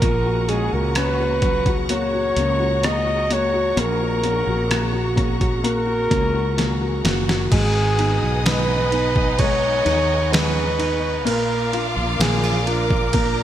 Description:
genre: pop ballad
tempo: 64 BPM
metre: 4/4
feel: straight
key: unclear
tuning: A4 = 440 Hz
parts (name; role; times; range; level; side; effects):
- mellow flugelhorn; melody; 0.0-13.4 s; Ab4 to Eb5; -22 LUFS; right 1 dB; none
- warm upright piano; accompaniment; 0.0-13.4 s; Bb2 to Gb4; -26 LUFS; left 5 dB; none
- dark studio string section; sustained chords; 0.0-13.4 s; Ab4 to Eb6; -30 LUFS; left 1 dB; none
- fingerpicked steel-string acoustic guitar; arpeggios; 0.0-13.4 s; Ab2 to Bb4; -30 LUFS; right 5 dB; ensemble chorus
- fretless electric bass; bass; 0.0-13.4 s; Gb1 to Eb2; -24 LUFS; equal; ensemble chorus
- dusty soul sampler-style drum kit; drums; 0.0-13.4 s; crash cymbal, hi-hat, kick drum, ride cymbal, rim click, snare drum; -23 LUFS; equal; overdrive, gated reverb
- warm studio violin section; second line; 7.5-13.4 s; Eb4 to Bb5; -28 LUFS; right 1 dB; none
room: moderate lush hall reverb, RT60 2.7 s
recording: bright 1980s-style digital production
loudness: -17 LUFS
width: side -11 dB against mid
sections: 0.0-7.5 A section; 7.5-13.4 B section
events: drum fill 6.6-7.5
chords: 0.0 Gbadd9/Bb; 7.5 Abm7; 11.3 Bb

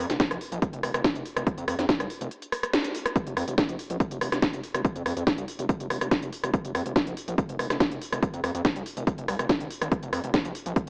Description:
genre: driving peak-time techno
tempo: 142 BPM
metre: 4/4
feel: straight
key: F minor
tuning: A4 = 439 Hz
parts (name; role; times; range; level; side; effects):
- gritty driven synth bass; bass; 0.0-10.9 s; F1 to F2; -31 LUFS; equal; sidechain pumping
- techno drum kit; drums; 0.1-10.9 s; hi-hat, rim click, snare drum; -27 LUFS; equal; none
- electronic kick drum; drums; 0.2-10.8 s; none; -26 LUFS; equal; none
room: light reverb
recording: dry, gritty hardware recording, small speaker sound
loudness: -25 LUFS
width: side -37 dB against mid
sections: 0.0-3.2 A section; 3.2-10.9 B section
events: band accent 2.7; drop 3.2-10.9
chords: none

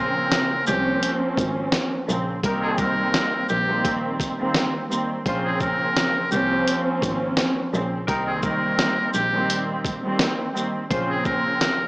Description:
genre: hip hop, boom-bap hip-hop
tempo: 85 BPM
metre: 4/4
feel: swing 55% on 16ths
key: Bb dorian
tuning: A4 = 441 Hz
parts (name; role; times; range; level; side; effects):
- trumpet with metal mute; melody; 0.0-11.9 s; G4 to Bb4; -24 LUFS; equal; none
- muted studio string section; accompaniment; 0.0-11.9 s; Db3 to Db4; -24 LUFS; right 1 dB; cassette tape
- warm double bass; bass; 0.0-11.4 s; Ab1 to C2; -29 LUFS; equal; none
- dusty soul sampler-style drum kit; drums; 0.3-11.8 s; hi-hat, kick drum, shaker, snare drum; -25 LUFS; equal; none
- mellow horn section; stabs; 2.5-11.1 s; Db4 to C5; -29 LUFS; left 1 dB; digital delay
room: light reverb, small room ambience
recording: small speaker sound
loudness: -20 LUFS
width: side -25 dB against mid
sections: 0.0-11.9 A section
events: none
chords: 0.0 Bbmadd9; 2.4 Cm7; 5.3 Bbmadd9; 8.1 Cm7; 10.9 Bbmadd9

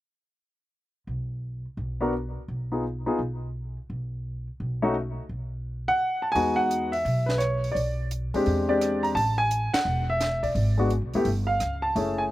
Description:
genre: jazz piano trio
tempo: 171 BPM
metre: 4/4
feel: swing 65% on 8ths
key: E major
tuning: A4 = 441 Hz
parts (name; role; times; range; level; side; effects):
- upright bass; bass; 1.1-12.3 s; E1 to E2; -29 LUFS; equal; none
- warm grand piano; melody; 2.0-12.3 s; G#3 to A#5; -24 LUFS; equal; none
- compact cocktail drum kit; drums; 6.4-12.1 s; hi-hat, kick drum, ride cymbal, rim click, snare drum; -35 LUFS; right 2 dB; none
room: little or no reverb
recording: recorded outdoors, with no room sound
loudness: -24 LUFS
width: side -15 dB against mid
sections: 0.7-6.4 A section; 6.4-12.3 B section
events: band accent 9.7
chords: 0.7 N.C.; 6.4 Emaj7; 7.8 Bm; 8.5 E7alt; 9.2 A5; 10.6 G#m7b5; 11.3 A7b13/G (rootless)

